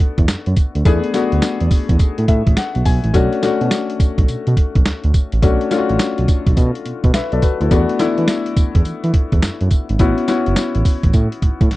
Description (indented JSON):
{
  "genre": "R&B, new jack swing",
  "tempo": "105 BPM",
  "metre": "4/4",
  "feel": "swing 64% on 16ths",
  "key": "unclear",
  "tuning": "A4 = 442 Hz",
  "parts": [
    { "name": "warm grand piano", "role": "accompaniment", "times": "0.0-11.8 s", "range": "A3 to G#5", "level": "-20 LUFS", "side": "left 4 dB", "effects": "none" },
    { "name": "smooth synth bass", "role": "bass", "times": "0.2-11.8 s", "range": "F#1 to E3", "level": "-17 LUFS", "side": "right 1 dB", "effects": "none" },
    { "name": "boom bap sampler-style drum kit", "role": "drums", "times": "0.2-11.8 s", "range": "hi-hat, kick drum, snare drum, tambourine", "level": "-15 LUFS", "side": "right 1 dB", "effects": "vintage 12-bit sampler grit" }
  ],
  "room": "little or no reverb",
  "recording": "dry, close 1970s-style studio recording",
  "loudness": "-14 LUFS",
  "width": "side -18 dB against mid",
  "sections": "0.0-11.8 A section",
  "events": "grand piano fill 2.0-3.1",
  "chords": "0.0 E7sus4; 3.1 Bm7; 7.7 E7sus4; 10.0 A6",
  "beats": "0.28 | 0.85 1.42 2.00 2.57 | 3.14 3.71 4.28 4.85 | 5.42 6.00 6.57 7.14 | 7.71 8.28 8.85 9.42 | 9.99 10.57 11.14 11.71"
}